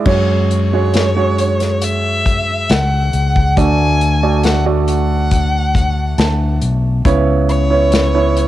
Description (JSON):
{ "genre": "pop ballad", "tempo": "69 BPM", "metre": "4/4", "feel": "straight", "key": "F# minor", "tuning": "A4 = 443 Hz", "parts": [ { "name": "warm baby grand piano", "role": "accompaniment", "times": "0.0-8.5 s", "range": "C#3 to A5", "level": "-18 LUFS", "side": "right 6 dB", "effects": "cassette tape" }, { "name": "fingered electric bass", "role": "bass", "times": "0.1-8.5 s", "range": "B1 to F#2", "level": "-16 LUFS", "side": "left 1 dB", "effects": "none" }, { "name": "natural country drum kit", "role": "drums", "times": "0.1-8.5 s", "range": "crash cymbal, hi-hat, kick drum, snare drum", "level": "-18 LUFS", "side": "left 2 dB", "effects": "cassette tape" }, { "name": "rich violin", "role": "melody", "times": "0.5-8.5 s", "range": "C#5 to G#5", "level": "-19 LUFS", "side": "left 2 dB", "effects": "cassette tape" } ], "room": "light reverb, small room ambience", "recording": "home recording on cassette", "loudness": "-12 LUFS", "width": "side -14 dB against mid", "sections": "0.1-8.5 A section", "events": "grand piano fill 5.8-7.1", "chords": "0.1 F#sus2; 3.6 D; 7.1 C#m7" }